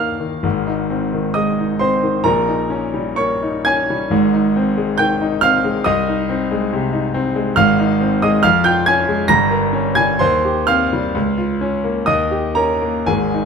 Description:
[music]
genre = classical, romantic character piece for solo piano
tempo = 56-71 BPM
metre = 2/4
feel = rubato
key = Ab major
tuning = A4 = 440 Hz
[part]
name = clear grand piano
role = solo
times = 0.0-13.5 s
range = G1 to Bb6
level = -14 LUFS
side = equal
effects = none
[sound]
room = moderate recital hall reverb, RT60 1.6 s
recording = close, detailed microphones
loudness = -15 LUFS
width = side -6 dB against mid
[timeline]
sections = 0.4-13.5 A section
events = none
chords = 0.4 Ab; 2.2 Eb7/Bb; 4.1 Ab; 5.9 Ab/C; 7.6 Ab; 8.4 Db/F; 9.3 Gdim; 10.2 Cm/Eb; 11.1 Bbm/Db; 12.1 Eb7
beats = | 0.45 1.36 | 2.25 3.18 | 4.11 4.99 | 5.85 6.71 | 7.57 8.43 | 9.29 10.19 | 11.15 12.08 | 13.07

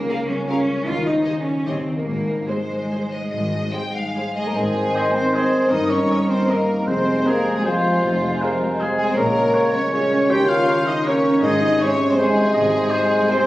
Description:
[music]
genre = classical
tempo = 135-176 BPM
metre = 3/4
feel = rubato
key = Ab major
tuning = A4 = 440 Hz
[part]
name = concert harp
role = arpeggios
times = 0.0-13.5 s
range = F2 to Db5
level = -27 LUFS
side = left 2 dB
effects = none
[part]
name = rich studio cello section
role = bass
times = 0.0-13.5 s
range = F3 to G4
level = -26 LUFS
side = right 1 dB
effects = none
[part]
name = rich studio double bass section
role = bass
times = 0.0-12.8 s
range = F1 to Eb2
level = -30 LUFS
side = right 1 dB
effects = none
[part]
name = rich studio violin section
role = melody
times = 0.1-13.5 s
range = F4 to G5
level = -29 LUFS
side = left 2 dB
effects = none
[part]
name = warm studio violin section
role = second line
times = 0.1-13.5 s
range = F4 to G5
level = -30 LUFS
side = equal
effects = none
[part]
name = rich studio viola section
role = accompaniment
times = 0.1-13.4 s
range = G4 to Eb5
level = -33 LUFS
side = right 1 dB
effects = none
[part]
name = mellow hollow concert flute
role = second line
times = 4.4-13.5 s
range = F5 to G6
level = -28 LUFS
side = equal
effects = none
[part]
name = mellow French horn section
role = sustained chords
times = 4.4-13.5 s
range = F3 to G4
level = -22 LUFS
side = left 1 dB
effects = none
[part]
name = clear clarinet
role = second line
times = 4.5-13.5 s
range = Bb4 to Db5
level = -26 LUFS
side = equal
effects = none
[part]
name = clear trombone section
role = sustained chords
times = 4.5-13.5 s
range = C3 to C4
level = -27 LUFS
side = right 2 dB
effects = none
[part]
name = mellow bassoon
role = accompaniment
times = 4.6-13.5 s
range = Eb3 to Bb3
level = -26 LUFS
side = equal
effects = none
[part]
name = warm oboe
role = second line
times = 4.9-13.5 s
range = Ab4 to Eb5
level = -25 LUFS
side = equal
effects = none
[part]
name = timpani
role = percussion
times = 11.4-12.0 s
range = none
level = barely audible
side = none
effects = none
[sound]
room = wet concert hall reverb, RT60 2.0 s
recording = recorded on a phone in the room, club reverb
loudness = -17 LUFS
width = side -16 dB against mid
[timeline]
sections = 0.0-4.6 A section; 4.6-13.5 A section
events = none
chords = 0.0 Bbm7/Db; 0.9 Ab/Eb; 1.7 Eb7; 2.1 Ab; 5.7 Eb/G; 6.9 Fm; 9.2 Bbm7; 10.3 Eb7; 11.4 Ab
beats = 0.09 0.49 | 0.86 1.25 1.66 | 2.06 2.48 2.92 | 3.32 3.72 4.16 | 4.56 4.95 5.34 | 5.71 6.09 6.50 | 6.88 7.26 7.66 | 8.03 8.41 8.80 | 9.17 9.54 9.93 | 10.30 10.67 11.06 | 11.43 11.80 12.19 | 12.54 12.91 13.30

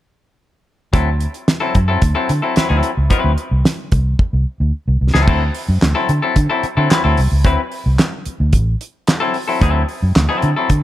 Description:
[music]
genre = funk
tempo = 111 BPM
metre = 4/4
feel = straight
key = D mixolydian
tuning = A4 = 441 Hz
[part]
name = semi-hollow electric guitar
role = accompaniment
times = 0.9-10.7 s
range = F#3 to B4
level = -19 LUFS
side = left 4 dB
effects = spring reverb
[part]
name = vintage muted fingered electric bass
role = bass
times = 0.9-10.8 s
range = A1 to D3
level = -15 LUFS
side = equal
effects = none
[part]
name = damped 70s drum kit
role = drums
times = 0.9-10.8 s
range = crash cymbal, handclaps, hi-hat, kick drum, snare drum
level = -16 LUFS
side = right 1 dB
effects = none
[sound]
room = little or no reverb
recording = none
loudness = -14 LUFS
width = side -14 dB against mid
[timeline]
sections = 0.9-5.3 A section; 5.3-10.8 B section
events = drum fill 4.2-5.3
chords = 0.9 D9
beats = | 0.94 1.48 2.02 2.56 | 3.11 3.65 4.19 4.73 | 5.28 5.82 6.36 6.90 | 7.45 7.99 8.53 9.07 | 9.62 10.16 10.70

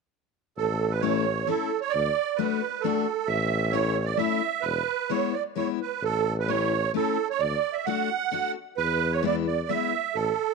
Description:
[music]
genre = alpine folk, alpine dance band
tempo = 131 BPM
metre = 3/4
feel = straight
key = A major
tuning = A4 = 440 Hz
[part]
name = musette accordion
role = melody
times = 0.6-10.5 s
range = A4 to F#5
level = -26 LUFS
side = right 12 dB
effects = none
[part]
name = warm tuba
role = bass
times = 0.6-10.3 s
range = E1 to E2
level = -29 LUFS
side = left 3 dB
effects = none
[part]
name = picked steel-string acoustic guitar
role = accompaniment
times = 1.0-9.9 s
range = G#3 to F#4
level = -29 LUFS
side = left 18 dB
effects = none
[sound]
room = light reverb, small room ambience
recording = 1960s-style stereo with parts hard left and right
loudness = -24 LUFS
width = side -3 dB against mid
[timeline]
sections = 0.6-10.5 A section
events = none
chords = 0.6 A; 1.9 D; 3.3 A; 4.6 E; 6.0 A; 7.4 D; 8.8 E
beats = | 0.57 1.03 1.48 | 1.94 2.39 2.83 | 3.28 3.74 4.19 | 4.65 5.11 5.57 | 6.03 6.49 6.95 | 7.41 7.87 8.32 | 8.78 9.24 9.70 | 10.15

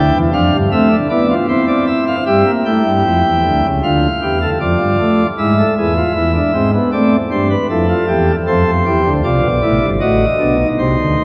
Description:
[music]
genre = classical, baroque-style 3-part fugue for pipe organ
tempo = 78 BPM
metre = 4/4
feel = straight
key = A minor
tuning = A4 = 440 Hz
[part]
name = pipe organ, sparkling flutes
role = solo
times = 0.0-11.2 s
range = G1 to G5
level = -14 LUFS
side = equal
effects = none
[sound]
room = wet cathedral reverb, RT60 4.8 s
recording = worn, warbling old tape, cassette tape, warbly pitch drift, faint mains hum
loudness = -14 LUFS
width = mono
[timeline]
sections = 0.0-2.3 A section; 2.3-11.2 B section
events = none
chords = 0.0 Dm; 0.7 Am; 2.3 A7/G; 3.8 Dm; 5.4 E7; 6.9 Am; 8.5 F; 10.0 F#dim7/A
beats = 0.71 1.49 | 2.27 3.06 3.83 4.60 | 5.38 6.15 6.92 7.69 | 8.46 9.23 10.00 10.78

